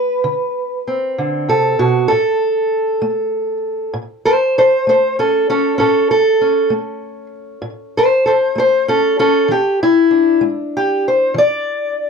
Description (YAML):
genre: acoustic country blues, solo or duo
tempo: 65 BPM (dotted quarters)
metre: 12/8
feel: straight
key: unclear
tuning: A4 = 440 Hz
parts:
  - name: fingerpicked steel-string acoustic guitar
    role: solo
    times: 0.0-12.1 s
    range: A2 to D5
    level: -13 LUFS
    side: equal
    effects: slapback echo
room: light reverb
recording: dry, close 1970s-style studio recording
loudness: -13 LUFS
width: side -5 dB against mid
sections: 0.0-12.1 A section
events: steel-string acoustic guitar solo 0.0-12.1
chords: 0.0 D7; 2.1 A; 9.5 E7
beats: 0.24 1.17 | 2.09 3.02 3.94 4.87 | 5.79 6.72 7.64 8.56 | 9.49 10.41 11.34